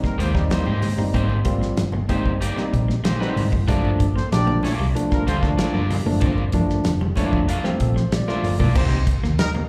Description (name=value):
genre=funk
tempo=95 BPM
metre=4/4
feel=straight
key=unclear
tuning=A4 = 440 Hz
part: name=clear horn section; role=second line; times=0.0-0.3, 4.2-5.4, 9.4-9.5 s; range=G3 to D5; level=-31 LUFS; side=equal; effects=slapback echo
part: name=clean electric guitar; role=riff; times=0.0-9.6 s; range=F3 to C4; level=-33 LUFS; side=equal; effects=spring reverb
part: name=tine electric piano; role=stabs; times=0.0-8.7 s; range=F3 to D5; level=-27 LUFS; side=equal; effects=none
part: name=damped 70s drum kit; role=drums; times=0.0-9.5 s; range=crash cymbal, hi-hat, kick drum, snare drum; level=-26 LUFS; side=equal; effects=none
part: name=electric guitar at the edge of break-up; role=accompaniment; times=0.2-9.0 s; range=Bb3 to F5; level=-31 LUFS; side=equal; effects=spring reverb, slapback echo
part: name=hollow-body short-scale picked electric bass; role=bass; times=0.2-9.6 s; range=F1 to Ab2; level=-24 LUFS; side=equal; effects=none
part: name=congas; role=percussion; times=0.5-9.7 s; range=none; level=-33 LUFS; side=equal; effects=none
room=light reverb, small room ambience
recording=live gig heard through the venue's PA, club reverb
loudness=-21 LUFS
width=mono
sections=0.0-8.8 A section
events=tine electric piano fill 7.5-8.8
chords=0.0 Abmaj9; 3.7 Gm7; 8.8 Cm7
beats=0.51 | 1.15 1.78 2.42 3.05 | 3.69 4.32 4.95 5.59 | 6.22 6.86 7.49 8.12 | 8.76 9.39